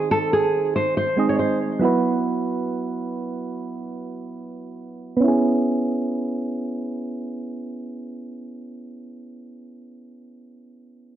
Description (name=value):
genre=hip hop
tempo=free time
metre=none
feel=none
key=C# minor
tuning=A4 = 440 Hz
part: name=nylon-string guitar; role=melody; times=0.0-1.6 s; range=G#4 to C#5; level=-21 LUFS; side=right 1 dB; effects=low-pass filter, digital delay
part: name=soft electric-piano-like synth keys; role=accompaniment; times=0.0-11.1 s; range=D#3 to D#5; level=-24 LUFS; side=right 2 dB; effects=chorus, low-pass filter
room=moderate plate reverb, RT60 1.6 s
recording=dark, warm production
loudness=-21 LUFS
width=side -11 dB against mid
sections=0.0-5.2 A section; 5.2-8.6 B section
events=filter sweep 0.0-5.2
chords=0.0 G#; 1.8 Bsus4; 5.2 C#m7